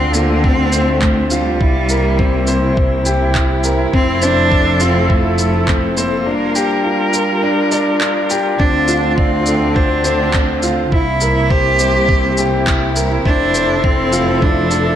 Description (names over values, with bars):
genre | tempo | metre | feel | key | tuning
piano and strings electronica | 103 BPM | 4/4 | straight | unclear | A4 = 442 Hz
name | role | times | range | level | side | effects
rich cello | melody | 0.0-15.0 s | G3 to G4 | -18 LUFS | right 1 dB | tape echo
muted string quartet | sustained chords | 0.0-15.0 s | C3 to Bb4 | -21 LUFS | equal | sidechain pumping
warm grand piano | riff | 0.0-15.0 s | C4 to D5 | -18 LUFS | left 1 dB | tape echo
rich symphonic double bass section | bass | 0.0-15.0 s | F1 to D2 | -19 LUFS | equal | sidechain pumping
electronic shaker and handclaps | drums | 0.1-14.8 s | none | -23 LUFS | equal | none
electronic kick drum | drums | 0.4-14.5 s | none | -16 LUFS | equal | none
room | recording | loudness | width
moderate plate reverb, RT60 2.1 s | dreamy mix soaked in reverb | -12 LUFS | side -10 dB against mid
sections
0.0-15.0 A section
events
none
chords
0.0 Dm7; 1.6 C7; 3.9 Fmaj7; 6.3 Gm7; 8.6 Dm7; 10.9 C7; 13.3 Fmaj7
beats
0.44 1.02 | 1.60 2.19 2.77 3.35 | 3.94 4.52 5.10 5.68 | 6.26 6.85 7.43 8.01 | 8.60 9.18 9.76 10.34 | 10.93 11.51 12.09 12.67 | 13.26 13.84 14.42